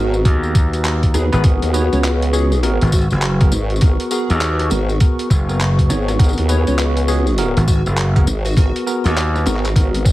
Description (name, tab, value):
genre	glitch hop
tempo	101 BPM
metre	4/4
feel	swing 62% on 16ths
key	G# minor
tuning	A4 = 440 Hz
part	plucky unison lead	melody	0.0-9.9 s	F#4 to C#5	-28 LUFS	equal	tape echo
part	dark analog pad	sustained chords	0.0-10.1 s	F#4 to C#6	-28 LUFS	left 1 dB	chorus, sidechain pumping
part	bell-like tine electric piano	stabs	0.0-10.0 s	B3 to C#5	-23 LUFS	equal	medium stereo tremolo, sidechain pumping, tape echo
part	formant-sweep wobble bass	bass	0.0-10.1 s	G#1 to D#2	-17 LUFS	equal	chorus, overdrive
part	boom bap sampler-style drum kit	drums	0.1-10.1 s	handclaps, hi-hat, rim click, tambourine	-25 LUFS	equal	none
part	gritty slap bass	bass	0.3-9.4 s	F#1 to D#2	-16 LUFS	equal	overdrive
part	electronic kick drum	drums	0.3-10.1 s	none	-14 LUFS	equal	none
room	little or no reverb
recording	vinyl crackle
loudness	-14 LUFS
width	side -16 dB against mid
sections	0.0-10.1 A section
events	none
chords	0.0 G#m9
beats	0.25 0.85 | 1.44 2.04 2.63 3.22 | 3.82 4.41 5.01 5.60 | 6.19 6.79 7.38 7.98 | 8.57 9.16 9.76